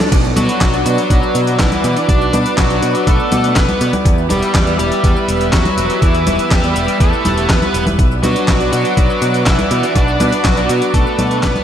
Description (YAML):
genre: italo disco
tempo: 122 BPM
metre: 4/4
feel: straight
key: unclear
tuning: A4 = 440 Hz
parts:
  - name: lush unison pad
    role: sustained chords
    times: 0.0-11.6 s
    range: B4 to E6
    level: -20 LUFS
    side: right 1 dB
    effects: chorus
  - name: chorused polysynth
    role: stabs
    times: 0.0-11.5 s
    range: B3 to D5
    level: -21 LUFS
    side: right 2 dB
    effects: ping-pong delay
  - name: dusty soul sampler-style drum kit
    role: drums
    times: 0.0-11.6 s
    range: cabasa, congas, crash cymbal, handclaps, hi-hat, snare drum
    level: -19 LUFS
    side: left 1 dB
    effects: studio reverb
  - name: picked electric bass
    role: bass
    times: 0.1-11.5 s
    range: E1 to B2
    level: -19 LUFS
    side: equal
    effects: none
  - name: electronic kick drum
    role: drums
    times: 0.1-11.5 s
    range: none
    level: -14 LUFS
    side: equal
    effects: studio reverb
  - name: smooth overdriven lead guitar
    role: melody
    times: 0.4-11.6 s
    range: E3 to D5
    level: -19 LUFS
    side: left 1 dB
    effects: ping-pong delay
room: moderate lush hall reverb, RT60 2.2 s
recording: dreamy mix soaked in reverb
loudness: -11 LUFS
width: side -9 dB against mid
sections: 0.1-11.6 A section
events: band accent 0.0; fade-out 10.6-11.6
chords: 0.1 Bm; 4.1 Em; 8.0 Bm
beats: | 0.12 0.61 1.10 1.59 | 2.09 2.58 3.07 3.56 | 4.05 4.55 5.04 5.53 | 6.02 6.51 7.00 7.50 | 7.99 8.48 8.97 9.46 | 9.96 10.45 10.94 11.43